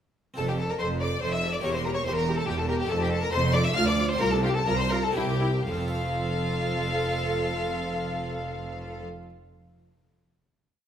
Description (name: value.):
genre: classical, baroque-style concerto movement with solo episodes.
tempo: 115-144 BPM.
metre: 3/4.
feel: straight.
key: F major.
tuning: A4 = 438 Hz.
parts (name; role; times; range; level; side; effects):
harpsichord; accompaniment; 0.3-9.3 s; C2 to F5; -37 LUFS; left 1 dB; none.
rich chamber violin section; melody; 0.4-9.0 s; F5 to F6; -34 LUFS; left 4 dB; none.
rich violin; melody; 0.4-9.0 s; G4 to F5; -31 LUFS; left 2 dB; none.
rich chamber violin section; second line; 0.4-9.0 s; F4 to F5; -34 LUFS; left 2 dB; none.
rich chamber viola section; accompaniment; 0.4-9.0 s; E4 to A4; -34 LUFS; equal; none.
rich studio cello section; bass; 0.4-9.0 s; C2 to F2; -31 LUFS; right 2 dB; none.
rich studio double bass section; bass; 0.4-9.0 s; E1 to D2; -32 LUFS; right 2 dB; none.
room: moderate recital hall reverb, RT60 1.6 s.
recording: none.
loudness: -24 LUFS.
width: side -9 dB against mid.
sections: 0.4-5.7 ritornello; 5.7-8.8 final chord.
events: slowing down 2.3-5.7.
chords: 0.4 F; 1.6 Edim; 2.9 F; 3.8 Dm; 4.2 Csus4; 5.2 C7; 5.7 F.